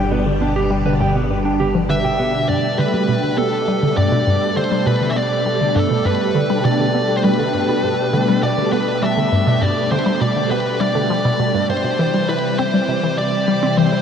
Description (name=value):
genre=ambient, sequencer-driven space music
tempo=101 BPM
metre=4/4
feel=straight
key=unclear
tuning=A4 = 440 Hz
part: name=phased string machine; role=sustained chords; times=0.0-14.0 s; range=B2 to G4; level=-19 LUFS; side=equal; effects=ensemble chorus, phaser
part: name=mellow electric guitar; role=arpeggios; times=0.0-2.3 s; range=B3 to G5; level=-25 LUFS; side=right 2 dB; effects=auto-pan, ping-pong delay
part: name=hollow square pluck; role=riff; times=0.0-14.0 s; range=G2 to E4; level=-20 LUFS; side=left 1 dB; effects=chorus, phaser, cassette tape, ping-pong delay
part: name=warm sub bass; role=bass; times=0.0-2.5 s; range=G1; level=-24 LUFS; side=equal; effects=tube saturation
part: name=fuzz lead guitar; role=melody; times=1.9-14.0 s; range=A4 to E5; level=-20 LUFS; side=equal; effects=distortion, ping-pong delay
room=wet huge ambient reverb, RT60 9.6 s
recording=none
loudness=-15 LUFS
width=side -7 dB against mid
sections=0.0-2.5 A section; 2.5-14.0 B section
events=none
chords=0.0 G; 2.5 Gadd9; 12.0 C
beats=| 0.12 0.71 1.30 1.90 | 2.49 3.09 3.68 4.27 | 4.87 5.46 6.06 6.65 | 7.24 7.84 8.43 9.03 | 9.62 10.21 10.81 11.40 | 12.00 12.59 13.19 13.78